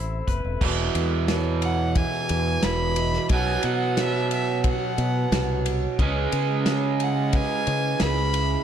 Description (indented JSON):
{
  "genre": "post-rock",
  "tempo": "89 BPM",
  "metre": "4/4",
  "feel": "straight",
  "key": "E major",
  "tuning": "A4 = 440 Hz",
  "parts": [
    { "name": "ethereal airy pad", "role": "sustained chords", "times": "0.0-8.6 s", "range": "C#3 to B5", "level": "-38 LUFS", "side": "left 2 dB", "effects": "none" },
    { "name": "twangy electric guitar", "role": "arpeggios", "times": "0.0-0.6 s", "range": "C4 to B4", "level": "-37 LUFS", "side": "left 7 dB", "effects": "lush chorus, slapback echo" },
    { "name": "vibraphone with medium hard mallets", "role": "arpeggios", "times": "0.0-8.6 s", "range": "B4 to E5", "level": "-34 LUFS", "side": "left 2 dB", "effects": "slapback echo" },
    { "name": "fingered electric bass", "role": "bass", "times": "0.0-8.6 s", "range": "E1 to C#3", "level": "-26 LUFS", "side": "equal", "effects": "none" },
    { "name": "loose indie drum kit", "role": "drums", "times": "0.3-8.5 s", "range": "crash cymbal, hi-hat, kick drum, ride cymbal, snare drum", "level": "-28 LUFS", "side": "left 1 dB", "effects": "none" },
    { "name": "overdriven electric guitar", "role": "riff", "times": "0.6-8.6 s", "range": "E2 to C#4", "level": "-26 LUFS", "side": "right 7 dB", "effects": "none" },
    { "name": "rich violin", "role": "melody", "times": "1.6-8.6 s", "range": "E5 to B5", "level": "-28 LUFS", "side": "left 1 dB", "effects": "slapback echo" }
  ],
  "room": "light reverb",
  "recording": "dark, warm production",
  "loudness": "-21 LUFS",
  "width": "side -9 dB against mid",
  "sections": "0.6-8.6 A section",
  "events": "none",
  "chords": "0.0 Amadd9; 0.6 E; 3.3 Bsus2; 6.0 C#m7",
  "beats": "| 0.61 1.28 1.96 2.63 | 3.30 3.97 4.64 5.32 | 5.99 6.66 7.34 8.01"
}